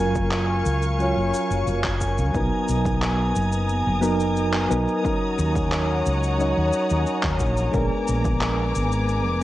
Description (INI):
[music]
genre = sunset chillout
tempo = 89 BPM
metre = 4/4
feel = straight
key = F# major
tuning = A4 = 440 Hz
[part]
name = soft electric-piano-like synth keys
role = accompaniment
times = 0.0-9.4 s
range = F#3 to C#5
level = -25 LUFS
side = equal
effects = chorus, auto-pan, ping-pong delay
[part]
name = warm studio string section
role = sustained chords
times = 0.0-9.4 s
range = B3 to D#6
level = -29 LUFS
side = left 1 dB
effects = none
[part]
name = woody fretless electric bass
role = bass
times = 0.0-9.4 s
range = E#1 to D#2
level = -24 LUFS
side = equal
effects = analog chorus
[part]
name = drifting glass-harmonics texture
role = texture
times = 0.0-9.4 s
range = G#5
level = -31 LUFS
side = right 1 dB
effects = chorus, built-in reverb
[part]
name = electronic kick drum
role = drums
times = 0.2-8.4 s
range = none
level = -28 LUFS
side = equal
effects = none
[part]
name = electronic shaker and handclaps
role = drums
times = 0.2-9.2 s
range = none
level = -31 LUFS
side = equal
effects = none
[sound]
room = moderate plate reverb, RT60 2.6 s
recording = worn, warbling old tape, cassette tape, warbly pitch drift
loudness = -20 LUFS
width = side -15 dB against mid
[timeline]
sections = 0.0-9.4 A section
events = none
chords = 0.0 F#maj7; 2.3 Bmaj7; 5.0 D#m7; 7.7 A#7b9